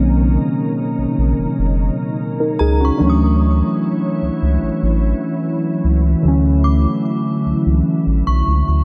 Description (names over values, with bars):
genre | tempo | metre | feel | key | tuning
R&B | 74 BPM | 4/4 | straight | unclear | A4 = 438 Hz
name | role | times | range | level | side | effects
muted felt-like synth keys | accompaniment | 0.0-8.8 s | B2 to A#4 | -20 LUFS | equal | chorus
glassy FM pad | sustained chords | 0.0-8.8 s | C#3 to C#5 | -25 LUFS | equal | ensemble chorus, built-in reverb
saturated sub bass | bass | 0.0-8.8 s | F#1 to D2 | -18 LUFS | equal | none
synth chime | texture | 2.6-8.8 s | A#5 to D#6 | -28 LUFS | equal | ensemble chorus, tremolo, delay
room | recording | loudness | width
light reverb, digital ambience | none | -17 LUFS | mono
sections
0.0-8.8 A section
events
none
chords
0.0 Bmaj9; 3.0 Dmaj9